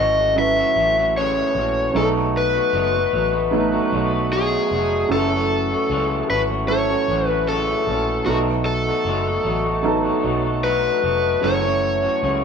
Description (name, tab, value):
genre	indie pop, bedroom pop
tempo	76 BPM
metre	4/4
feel	straight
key	F# dorian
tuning	A4 = 439 Hz
part	overdriven slide guitar	melody	0.0-12.4 s	F#4 to E5	-20 LUFS	left 2 dB	none
part	electric guitar through a small old amp	accompaniment	0.0-12.4 s	F#2 to F#4	-24 LUFS	left 2 dB	warbly pitch drift
part	warm upright piano	accompaniment	0.0-12.4 s	F#3 to B4	-24 LUFS	right 4 dB	none
part	vintage muted fingered electric bass	bass	0.0-12.4 s	E#1 to C#2	-27 LUFS	equal	none
room	moderate large studio reverb, RT60 1.2 s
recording	band playing live in one room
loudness	-17 LUFS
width	side -6 dB against mid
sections	0.0-12.4 A section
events	none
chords	0.0 F#m7; 1.9 B7; 5.1 F#m7; 8.3 B7; 11.4 F#m7